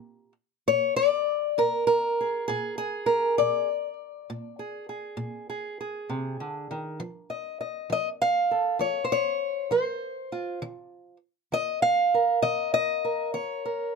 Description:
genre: acoustic country blues, solo or duo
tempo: 66 BPM (dotted quarters)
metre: 12/8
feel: straight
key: Bb mixolydian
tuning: A4 = 441 Hz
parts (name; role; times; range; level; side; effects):
- fingerpicked old ladder-braced acoustic guitar; solo; 0.0-14.0 s; Bb2 to F5; -25 LUFS; left 1 dB; none
room: light reverb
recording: close, detailed microphones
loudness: -24 LUFS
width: side -4 dB against mid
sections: 0.0-14.0 A section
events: none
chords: 0.0 Bb7; 7.0 F7; 10.6 Eb5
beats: 0.68 1.58 2.48 | 3.38 4.29 5.19 6.09 | 7.00 7.90 8.81 9.71 | 10.62 11.53 12.44 13.34

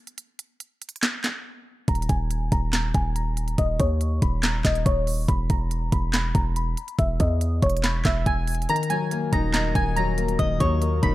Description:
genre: hip hop, trap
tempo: 141 BPM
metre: 4/4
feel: half-time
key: Eb phrygian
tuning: A4 = 439 Hz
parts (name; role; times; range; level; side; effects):
- trap drum kit; drums; 0.1-11.1 s; handclaps, hi-hat, kick drum, snare drum; -25 LUFS; equal; none
- soft synth bell; melody; 1.9-11.1 s; Db5 to Cb7; -28 LUFS; equal; chorus, low-pass filter, ping-pong delay
- hard-hitting 808-style bass; bass; 1.9-11.1 s; Eb1 to E2; -24 LUFS; equal; none
- dark baby grand piano; accompaniment; 8.7-11.1 s; Eb3 to Eb5; -26 LUFS; left 4 dB; low-pass filter
room: digital ambience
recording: dark, warm production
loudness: -21 LUFS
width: side -16 dB against mid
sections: 0.0-11.1 A section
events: break 0.0-1.9; filter sweep 0.0-8.7; kick muted 8.7-9.1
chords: 0.0 N.C.; 1.9 Eb5; 5.3 E; 8.7 Ebm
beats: | 0.18 0.60 1.03 1.46 | 1.88 2.31 2.73 3.16 | 3.58 4.01 4.43 4.86 | 5.28 5.71 6.13 6.56 | 6.99 7.41 7.84 8.26 | 8.69 9.11 9.54 9.96 | 10.39 10.82

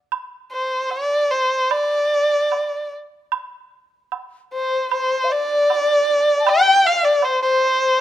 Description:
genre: chinese traditional, Chinese chamber ensemble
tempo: 76 BPM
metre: 2/4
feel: rubato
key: D yu mode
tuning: A4 = 440 Hz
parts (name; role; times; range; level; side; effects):
- woodblock; percussion; 0.1-7.4 s; none; -25 LUFS; right 8 dB; none
- dark erhu; melody; 0.5-8.0 s; C5 to G5; -17 LUFS; equal; none
- breathy mellow low xiao; second line; 4.5-8.0 s; C5 to A5; -22 LUFS; left 6 dB; none
room: light reverb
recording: close, detailed microphones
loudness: -16 LUFS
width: side -12 dB against mid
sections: 0.0-3.3 A section; 3.3-8.0 B section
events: none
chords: none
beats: | 0.11 0.90 | 1.70 2.51 | 3.31 4.11 | 4.90 5.68 | 6.44 7.21 | 7.98

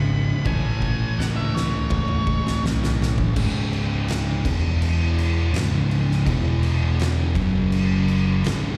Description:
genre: stoner and doom metal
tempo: 83 BPM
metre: 4/4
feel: straight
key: C# minor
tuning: A4 = 445 Hz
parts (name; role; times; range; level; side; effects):
- octave-fuzz lead guitar; melody; 0.0-2.6 s; C#5 to B5; -33 LUFS; equal; distortion, slapback echo, tape echo
- distorted electric guitar; riff; 0.0-3.3 s; C#2 to A4; -33 LUFS; equal; none
- thick fuzz guitar; riff; 0.0-8.8 s; C#2 to A3; -29 LUFS; equal; distortion
- thick fuzz guitar; riff; 0.0-8.8 s; C#2 to A3; -29 LUFS; equal; distortion, slapback echo
- overdriven picked electric bass; bass; 0.0-8.8 s; C#1 to C#2; -26 LUFS; equal; none
- oversized low-tuned drum kit; drums; 0.5-8.6 s; crash cymbal, kick drum, snare drum, toms; -29 LUFS; equal; none
room: small room ambience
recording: live gig heard through the venue's PA, recital hall reverb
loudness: -22 LUFS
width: mono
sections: 0.0-3.4 A section; 3.4-8.8 B section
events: drum fill 0.5-3.4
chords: 0.5 A; 3.4 C#5; 4.5 E5; 5.5 C#5; 6.3 E5; 7.4 F#5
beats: | 0.46 1.18 1.91 2.64 | 3.36 4.09 4.82 5.54 | 6.27 6.99 7.72 8.44

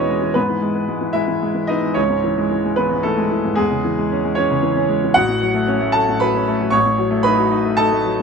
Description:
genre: classical, romantic character piece for solo piano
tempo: 113 BPM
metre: 3/4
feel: rubato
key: unclear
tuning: A4 = 440 Hz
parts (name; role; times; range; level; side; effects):
- bright grand piano; solo; 0.0-8.2 s; A1 to C#6; -16 LUFS; equal; none
room: little or no reverb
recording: close, detailed microphones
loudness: -16 LUFS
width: side -5 dB against mid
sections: 0.0-8.2 A section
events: none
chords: 0.4 E/G#; 2.0 C#m; 3.6 C#m/E; 5.2 F#m/A; 6.7 D#m7b5/A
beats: | 0.36 0.89 1.43 | 1.98 2.53 3.06 | 3.59 4.12 4.64 | 5.17 5.69 6.22 | 6.74 7.26 7.80

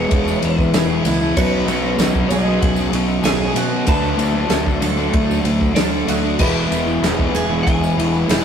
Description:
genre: rock, shoegaze and dream pop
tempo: 95 BPM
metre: 4/4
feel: straight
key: E major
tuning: A4 = 440 Hz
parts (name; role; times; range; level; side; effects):
- twelve-string electric guitar; melody; 0.0-8.4 s; B4 to A5; -27 LUFS; right 1 dB; none
- picked twelve-string acoustic guitar; arpeggios; 0.0-8.4 s; E4 to B4; -26 LUFS; right 2 dB; none
- overdriven semi-hollow guitar; riff; 0.0-8.4 s; B2 to E4; -22 LUFS; equal; none
- semi-hollow electric guitar; riff; 0.0-8.4 s; B2 to F#4; -25 LUFS; right 6 dB; none
- thick fuzz guitar; riff; 0.0-8.4 s; E2 to D4; -23 LUFS; left 3 dB; distortion
- fuzz fingered electric bass; bass; 0.0-8.4 s; E1 to B2; -23 LUFS; equal; overdrive
- loose indie drum kit; drums; 0.1-8.4 s; crash cymbal, kick drum, ride cymbal, snare drum; -20 LUFS; equal; none
- tambourine; percussion; 0.3-8.4 s; none; -36 LUFS; right 7 dB; none
- hollow soft pad; sustained chords; 6.9-8.4 s; E4 to G#5; -28 LUFS; left 2 dB; chorus
room: moderate small room reverb, RT60 0.6 s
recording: rough rehearsal-room recording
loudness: -15 LUFS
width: side -8 dB against mid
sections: 0.0-8.4 A section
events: none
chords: 0.0 E; 1.4 Badd9; 3.9 D; 6.4 E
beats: 0.12 0.75 | 1.38 2.00 2.63 3.26 | 3.89 4.52 5.15 5.78 | 6.41 7.04 7.67 8.30

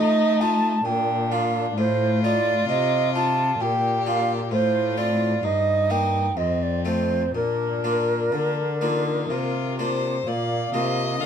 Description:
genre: classical, baroque-style sonata movement with continuo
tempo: 60-67 BPM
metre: 3/4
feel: rubato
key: Bb major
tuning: A4 = 440 Hz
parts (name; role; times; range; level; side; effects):
- clear violin; melody; 0.0-11.3 s; C4 to F5; -29 LUFS; left 7 dB; none
- mellow silver concert flute; second line; 0.0-11.3 s; Bb4 to A5; -24 LUFS; right 3 dB; none
- harpsichord; accompaniment; 0.0-11.3 s; F2 to F4; -27 LUFS; left 2 dB; none
- warm cello; bass; 0.0-11.3 s; F2 to A3; -27 LUFS; equal; none
room: moderate studio reverb, RT60 0.6 s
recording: none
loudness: -20 LUFS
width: side -8 dB against mid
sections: 0.0-10.3 A section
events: none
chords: 0.0 F7/A; 0.9 Bb; 1.8 F7/A; 3.6 Bb; 4.5 F/A; 5.4 Eb/G; 6.4 F; 7.4 Bb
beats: 0.85 | 1.77 2.69 3.60 | 4.52 5.44 6.38 | 7.36 8.34 9.31 | 10.28 11.21

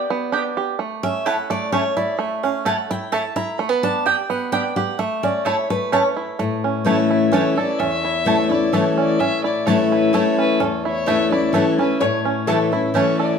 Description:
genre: bluegrass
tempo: 128 BPM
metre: 3/4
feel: straight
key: A mixolydian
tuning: A4 = 440 Hz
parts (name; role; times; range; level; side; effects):
- bluegrass banjo; melody; 0.0-13.4 s; A3 to A4; -23 LUFS; right 5 dB; none
- picked steel-string acoustic guitar; accompaniment; 0.0-13.4 s; E2 to B5; -20 LUFS; left 3 dB; none
- mandolin; stabs; 0.3-13.0 s; A3 to A5; -24 LUFS; right 3 dB; none
- warm fiddle; melody; 7.3-13.4 s; A4 to E5; -24 LUFS; left 3 dB; none
- lap resonator guitar; second line; 12.0-12.8 s; A4 to C#5; -24 LUFS; left 3 dB; none
room: moderate large studio reverb, RT60 1.2 s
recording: band playing live in one room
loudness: -17 LUFS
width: side -6 dB against mid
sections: 0.0-6.4 A section; 6.4-13.4 B section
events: steel-string acoustic guitar solo 0.0-6.4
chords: 0.0 G; 0.8 A; 3.6 G; 5.0 A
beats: 0.33 | 0.79 1.26 1.73 | 2.19 2.66 3.13 | 3.59 4.06 4.53 | 4.99 5.46 5.93 | 6.39 6.86 7.33 | 7.80 8.27 8.73 | 9.20 9.67 10.14 | 10.61 11.08 11.54 | 12.01 12.48 12.95

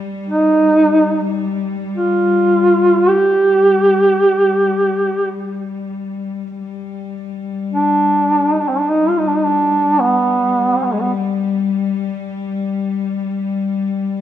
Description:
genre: caucasian folk, Caucasian lament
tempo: 53 BPM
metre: 3/4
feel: rubato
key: unclear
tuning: A4 = 440 Hz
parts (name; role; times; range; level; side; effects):
- warm studio cello section; drone; 0.0-14.2 s; G3; -21 LUFS; left 5 dB; none
- mellow duduk; melody; 0.3-11.1 s; Ab3 to G4; -13 LUFS; right 1 dB; none
room: moderate scoring stage reverb, RT60 1.8 s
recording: dark, warm production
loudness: -13 LUFS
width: side -11 dB against mid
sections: 0.0-6.6 A section; 6.6-14.2 B section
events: none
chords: none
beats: 0.86 1.99 | 3.11 4.25 5.41 | 6.59 7.73 8.87 | 10.01 11.12 12.24 | 13.36

